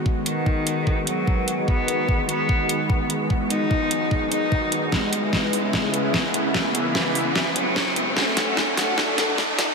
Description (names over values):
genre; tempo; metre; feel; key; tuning
heavy wobble dubstep; 148 BPM; 4/4; swing 53% on 16ths, half-time; G# phrygian; A4 = 440 Hz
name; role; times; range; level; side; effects
lush unison pad; sustained chords; 0.0-9.7 s; C#3 to F#4; -25 LUFS; equal; chorus, phaser, sidechain pumping
riser; sound effects; 0.4-9.7 s; none; -30 LUFS; equal; none
electronic kick drum; drums; 0.1-9.5 s; none; -24 LUFS; equal; none
clear cello; melody; 0.3-9.3 s; D#3 to D#4; -26 LUFS; left 1 dB; low-pass filter, ping-pong delay
dubstep drum kit; drums; 0.3-9.7 s; hi-hat, snare drum; -24 LUFS; equal; none
room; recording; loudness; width
wet huge ambient reverb, RT60 8.9 s; dreamy mix soaked in reverb, high-pass filter; -20 LUFS; side -4 dB against mid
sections
0.0-9.7 A section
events
build-up 0.0-9.7; filter sweep 0.0-9.7; riser 0.4-9.7; drum fill 4.9-9.7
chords
0.0 G#m7; 4.9 C#m7; 8.2 F#m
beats
| 0.06 0.46 0.87 1.27 | 1.68 2.08 2.49 2.90 | 3.30 3.71 4.11 4.52 | 4.92 5.33 5.73 6.14 | 6.54 6.95 7.36 7.76 | 8.17 8.57 8.98 9.38